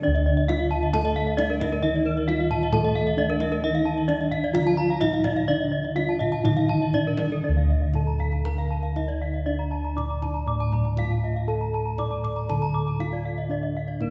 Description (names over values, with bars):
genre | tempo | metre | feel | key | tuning
Balinese gamelan | 119-133 BPM | 4/4 | straight | D pelog | A4 = 440 Hz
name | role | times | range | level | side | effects
gamelan-type bronze metallophone | melody | 0.0-14.1 s | Bb3 to D5 | -30 LUFS | equal | none
gamelan-type bronze metallophone | accompaniment | 0.0-7.4 s | D3 to A3 | -33 LUFS | equal | none
gamelan-type bronze metallophone | arpeggios | 0.0-14.1 s | Bb4 to D6 | -32 LUFS | equal | none
gamelan-type bronze metallophone | arpeggios | 0.0-14.0 s | A4 to Bb5 | -36 LUFS | equal | none
gamelan-type bossed gongs | bass | 0.0-14.1 s | D2 to A4 | -29 LUFS | equal | none
kendang | percussion | 0.2-14.1 s | none | -35 LUFS | equal | none
room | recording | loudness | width
wet concert hall reverb, RT60 1.9 s | recorded in a church or concert hall, nothing above 8.0 kHz | -24 LUFS | mono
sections
0.0-7.4 A section; 7.4-14.1 B section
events
none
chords
none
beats
| 0.03 0.48 0.93 1.38 | 1.83 2.28 2.73 3.18 | 3.63 4.09 4.54 5.01 | 5.48 5.96 6.45 6.94 | 7.44 7.95 8.45 8.96 | 9.46 9.96 10.47 10.97 | 11.48 11.98 12.48 12.99 | 13.49 14.00